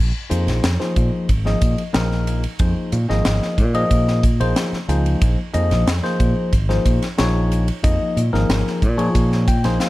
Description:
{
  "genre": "electric jazz fusion",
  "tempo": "92 BPM",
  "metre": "4/4",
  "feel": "straight",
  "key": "Bb minor",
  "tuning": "A4 = 440 Hz",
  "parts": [
    { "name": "fingered electric bass", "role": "bass", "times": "0.0-9.8 s", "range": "Ab1 to Bb2", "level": "-19 LUFS", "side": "equal", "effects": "none" },
    { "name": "bright tine electric piano", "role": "accompaniment", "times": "0.3-9.9 s", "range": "F3 to Ab5", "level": "-21 LUFS", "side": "left 2 dB", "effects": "phaser" },
    { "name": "crisp fusion drum kit", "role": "drums", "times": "0.3-9.9 s", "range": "hi-hat, kick drum, ride cymbal, snare drum", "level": "-21 LUFS", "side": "equal", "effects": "none" }
  ],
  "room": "light reverb, studio reverb",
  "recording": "none",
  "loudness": "-16 LUFS",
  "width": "side -18 dB against mid",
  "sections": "0.0-9.9 A section",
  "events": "tine electric piano fill 9.2-9.9",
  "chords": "0.0 Bbm7"
}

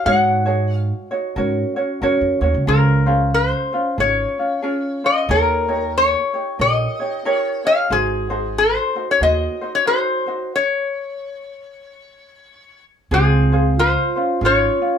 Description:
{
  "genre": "Hawaiian",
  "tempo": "92 BPM",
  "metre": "4/4",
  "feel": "swing 61% on 8ths",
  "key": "Db major",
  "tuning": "A4 = 441 Hz",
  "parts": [
    { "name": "metal-body resonator slide guitar", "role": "melody", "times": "0.0-15.0 s", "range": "C4 to Gb5", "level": "-18 LUFS", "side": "left 3 dB", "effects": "none" },
    { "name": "ukulele", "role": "accompaniment", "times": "0.0-15.0 s", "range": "Db4 to Db5", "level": "-22 LUFS", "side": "right 1 dB", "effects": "none" },
    { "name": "upright bass", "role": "bass", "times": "0.1-14.7 s", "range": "Ab1 to Ab2", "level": "-20 LUFS", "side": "right 1 dB", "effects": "none" },
    { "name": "vibraphone with soft mallets", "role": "second line", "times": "13.1-15.0 s", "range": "C4 to F4", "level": "-24 LUFS", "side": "right 6 dB", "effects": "none" }
  ],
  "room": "wet studio ambience, RT60 0.5 s",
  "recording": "band playing live in one room",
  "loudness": "-16 LUFS",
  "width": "side -8 dB against mid",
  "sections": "0.0-13.1 A section; 13.1-15.0 A section",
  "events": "stop 10.5-13.1",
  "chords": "0.1 Ab7sus4; 1.4 Ab9sus4; 2.7 Dbmaj7; 5.3 Eb7; 7.9 Ab7; 10.5 N.C.; 13.1 Dbmaj7"
}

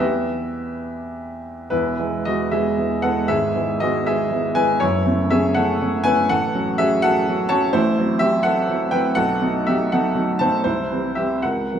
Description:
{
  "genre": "classical, romantic character piece for solo piano",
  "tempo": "68-87 BPM (dotted quarters)",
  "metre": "6/8",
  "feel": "rubato",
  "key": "E major",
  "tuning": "A4 = 440 Hz",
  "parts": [
    { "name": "clear baby grand piano", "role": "solo", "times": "0.0-11.8 s", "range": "E1 to A5", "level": "-18 LUFS", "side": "equal", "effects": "none" }
  ],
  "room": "wet recital hall reverb, RT60 1.6 s",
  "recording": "none",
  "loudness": "-18 LUFS",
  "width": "side -8 dB against mid",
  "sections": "0.0-1.7 A section; 1.7-11.8 B section",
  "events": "none",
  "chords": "0.0 Em; 1.7 E; 3.3 E/G#; 4.8 F#m7; 6.3 F#m/A; 7.8 F#m7b5/A; 9.2 B7; 10.6 C"
}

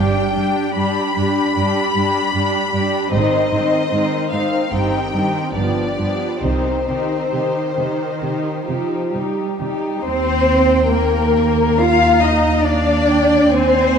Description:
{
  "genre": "classical, slow romantic movement for string orchestra",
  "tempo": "65-79 BPM",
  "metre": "4/4",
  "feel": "rubato",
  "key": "C minor, Eb major from 10.0 s",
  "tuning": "A4 = 439 Hz",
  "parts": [
    { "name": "rich symphonic violin section", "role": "melody", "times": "0.0-14.0 s", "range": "C5 to B5", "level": "-23 LUFS", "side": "left 4 dB", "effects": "none" },
    { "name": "dark chamber violin section", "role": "second line", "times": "0.0-14.0 s", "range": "D4 to F5", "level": "-20 LUFS", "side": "left 3 dB", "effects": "none" },
    { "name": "rich studio viola section", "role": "accompaniment", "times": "0.0-14.0 s", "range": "Eb3 to F4", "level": "-21 LUFS", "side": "right 2 dB", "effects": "none" },
    { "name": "dark chamber double bass section", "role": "bass", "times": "0.0-14.0 s", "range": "G1 to Eb2", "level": "-21 LUFS", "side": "right 2 dB", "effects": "none" },
    { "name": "dark symphonic cello section", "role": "bass", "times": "0.0-14.0 s", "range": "G2 to F4", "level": "-22 LUFS", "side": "right 3 dB", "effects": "none" }
  ],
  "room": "wet scoring stage reverb, RT60 1.9 s",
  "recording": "dark, warm production",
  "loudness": "-15 LUFS",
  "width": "side -7 dB against mid",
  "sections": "0.0-10.0 A section; 10.0-14.0 B section",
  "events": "none",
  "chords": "0.0 G; 3.1 Ab; 4.7 Cm/G; 5.6 G7; 6.4 Cm; 10.0 Eb"
}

